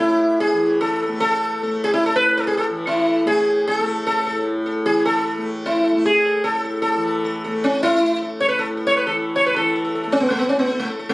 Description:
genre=indian classical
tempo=151 BPM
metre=7/4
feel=uneven beats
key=unclear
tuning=A4 = 440 Hz
part: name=sitar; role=melody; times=0.0-11.1 s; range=A3 to C#5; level=-18 LUFS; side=equal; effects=none
part: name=tanpura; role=drone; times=0.0-11.1 s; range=A2 to A3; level=-25 LUFS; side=equal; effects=none
room=moderate studio reverb, RT60 0.5 s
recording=recorded on a phone in the room, studio reverb, compression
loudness=-17 LUFS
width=side -20 dB against mid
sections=0.0-9.6 A section; 9.6-11.1 B section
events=speeding up 0.0-11.1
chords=none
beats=0.40 0.81 | 1.22 1.63 2.03 2.44 2.85 3.25 3.65 | 4.05 4.45 4.85 5.25 5.65 6.04 6.44 | 6.83 7.22 7.62 8.01 8.39 8.78 9.17 | 9.55 9.94 10.32 10.70 11.08

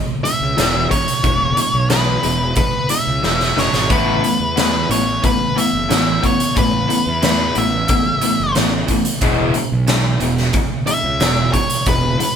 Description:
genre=classic rock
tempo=90 BPM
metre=4/4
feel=straight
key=A major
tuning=A4 = 440 Hz
part: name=raw garage guitar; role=riff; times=0.0-12.4 s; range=E3 to E4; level=-22 LUFS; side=left 4 dB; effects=overdrive
part: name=tight distorted guitar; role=riff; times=0.0-12.4 s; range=E2 to A3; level=-25 LUFS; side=right 10 dB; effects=distortion
part: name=octave-fuzz lead guitar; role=melody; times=0.2-12.4 s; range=B4 to E5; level=-19 LUFS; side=left 1 dB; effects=distortion
part: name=big rock drum kit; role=drums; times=0.3-12.4 s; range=hi-hat, kick drum, snare drum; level=-19 LUFS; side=equal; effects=none
part: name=fuzz fingered electric bass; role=bass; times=0.4-12.2 s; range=E1 to E2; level=-21 LUFS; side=equal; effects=overdrive
room=moderate studio ambience, RT60 0.5 s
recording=band playing live in one room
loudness=-14 LUFS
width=side -8 dB against mid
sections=0.0-12.4 A section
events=drum fill 3.2-3.9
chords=0.0 E; 3.9 Asus2; 9.2 E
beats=0.57 | 1.24 1.90 2.57 3.23 | 3.90 4.57 5.23 5.90 | 6.56 7.23 7.89 8.56 | 9.22 9.88 10.55 11.21 | 11.88

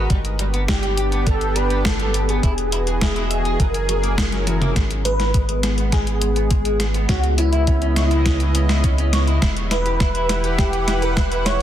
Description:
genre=synthwave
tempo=103 BPM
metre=4/4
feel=straight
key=unclear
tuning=A4 = 440 Hz
part: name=lush unison pad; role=sustained chords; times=0.0-11.6 s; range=C#3 to F#5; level=-26 LUFS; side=equal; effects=chorus, sidechain pumping
part: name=clean electric guitar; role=riff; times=0.0-11.5 s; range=F#3 to E5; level=-31 LUFS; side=right 2 dB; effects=lush chorus, low-pass filter, digital delay
part: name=round analog bass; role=bass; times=0.0-11.6 s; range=E1 to C#2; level=-21 LUFS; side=equal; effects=none
part: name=electronic kick drum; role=drums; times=0.1-11.3 s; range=none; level=-20 LUFS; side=equal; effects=none
part: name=gated 80s digital drum machine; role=drums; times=0.1-11.6 s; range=hi-hat, snare drum, toms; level=-25 LUFS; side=left 1 dB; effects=gated reverb, gated reverb snare
part: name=expressive synth lead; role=melody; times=0.7-11.6 s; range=E4 to C#5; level=-25 LUFS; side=equal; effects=ensemble chorus, digital delay
part: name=FM electric piano with soft pad layer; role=second line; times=5.0-11.6 s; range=E4 to C#5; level=-29 LUFS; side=equal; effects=chorus, phaser, digital delay
room=light reverb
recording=dense, heavily limited modern master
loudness=-17 LUFS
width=side -11 dB against mid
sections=0.0-4.8 A section; 4.8-11.6 B section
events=drum fill 4.5, 4.8-11.6; filter sweep on clean electric guitar 4.8-11.6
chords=0.1 G; 2.4 Emaj7; 3.6 F#7; 4.8 G#m; 7.1 C#m7; 9.4 Emadd9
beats=| 0.10 0.68 1.27 1.85 | 2.43 3.01 3.60 4.18 | 4.76 5.34 5.93 6.51 | 7.09 7.67 8.26 8.84 | 9.42 10.01 10.59 11.17

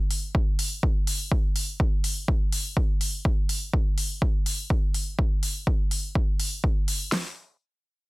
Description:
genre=progressive house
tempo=124 BPM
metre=4/4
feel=straight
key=none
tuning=none
part: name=electronic hi-hat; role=drums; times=0.1-7.0 s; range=none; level=-29 LUFS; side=left 1 dB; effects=none
part: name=deep house drum kit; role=drums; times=0.3-7.2 s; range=hi-hat, kick drum, snare drum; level=-24 LUFS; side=equal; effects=none
room=little or no reverb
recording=dense, heavily limited modern master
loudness=-23 LUFS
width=side -22 dB against mid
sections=0.0-7.1 A section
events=none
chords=none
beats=0.35 0.83 | 1.31 1.80 2.28 2.77 | 3.25 3.73 4.22 4.70 | 5.19 5.67 6.15 6.64 | 7.12

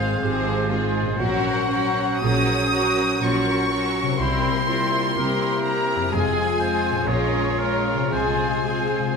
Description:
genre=classical, slow romantic movement for symphony orchestra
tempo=56-64 BPM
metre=3/4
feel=rubato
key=F minor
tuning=A4 = 444 Hz
part: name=warm studio violin section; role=melody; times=0.0-9.2 s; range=Db5 to Eb6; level=-26 LUFS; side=left 2 dB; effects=none
part: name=clear oboe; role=second line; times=0.0-9.2 s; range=Ab4 to C5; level=-29 LUFS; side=right 3 dB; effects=none
part: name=clear studio violin section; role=second line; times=0.0-9.2 s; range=E4 to C5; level=-30 LUFS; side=left 2 dB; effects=none
part: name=mellow clarinet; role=second line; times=0.0-9.2 s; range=E4 to Ab4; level=-29 LUFS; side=left 1 dB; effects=none
part: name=warm studio viola section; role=accompaniment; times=0.0-9.2 s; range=F3 to Db4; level=-29 LUFS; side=right 1 dB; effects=none
part: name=mellow French horn section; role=sustained chords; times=0.0-9.1 s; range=Ab3 to Ab4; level=-28 LUFS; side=equal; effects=none
part: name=concert harp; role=arpeggios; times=0.0-9.2 s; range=F2 to C5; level=-28 LUFS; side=left 6 dB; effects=none
part: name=rich studio cello section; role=bass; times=0.0-9.0 s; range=F2 to C3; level=-30 LUFS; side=right 3 dB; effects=none
part: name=rich studio double bass section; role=bass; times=0.0-9.0 s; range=F1 to C2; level=-30 LUFS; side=right 4 dB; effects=none
room=wet concert hall reverb, RT60 1.8 s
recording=minimal, uncompressed stereo recording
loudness=-19 LUFS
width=side -5 dB against mid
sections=0.0-9.2 A section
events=none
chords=0.0 Fm/Ab; 1.2 Gb/Bb; 4.2 C7; 6.1 Fm; 7.1 Bbm7; 8.1 Fm/C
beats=0.22 | 1.20 2.23 3.22 | 4.20 5.17 6.12 | 7.07 8.12

